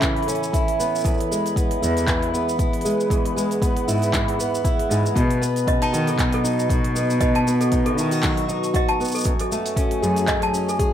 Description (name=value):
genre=folktronica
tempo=117 BPM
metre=4/4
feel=swing 56% on 16ths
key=unclear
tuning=A4 = 440 Hz
part: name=warbly tape-like pad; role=sustained chords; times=0.0-10.9 s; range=A3 to C#6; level=-26 LUFS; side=equal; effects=chorus, built-in reverb
part: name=fingerpicked steel-string acoustic guitar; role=arpeggios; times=0.0-10.9 s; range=E2 to G#4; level=-24 LUFS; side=equal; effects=ping-pong delay, plate reverb
part: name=electronic kick drum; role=drums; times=0.0-10.9 s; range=none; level=-23 LUFS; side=equal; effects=none
part: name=organic electronic drum kit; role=drums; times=0.0-10.9 s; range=cabasa, handclaps, hi-hat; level=-29 LUFS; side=equal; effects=none
part: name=dark cello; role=bass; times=1.8-10.2 s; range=E2 to D#3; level=-24 LUFS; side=equal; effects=none
part: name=toy piano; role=second line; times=5.7-10.8 s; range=A4 to A5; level=-27 LUFS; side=equal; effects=tape echo
room=light reverb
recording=none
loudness=-18 LUFS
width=side -10 dB against mid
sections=0.0-10.9 A section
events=none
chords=0.0 Aadd9; 1.1 E; 5.2 B; 9.3 F#madd9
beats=0.03 0.54 | 1.05 1.57 2.08 2.59 | 3.10 3.62 4.13 4.64 | 5.16 5.67 6.18 6.69 | 7.21 7.72 8.23 8.75 | 9.26 9.77 10.28 10.80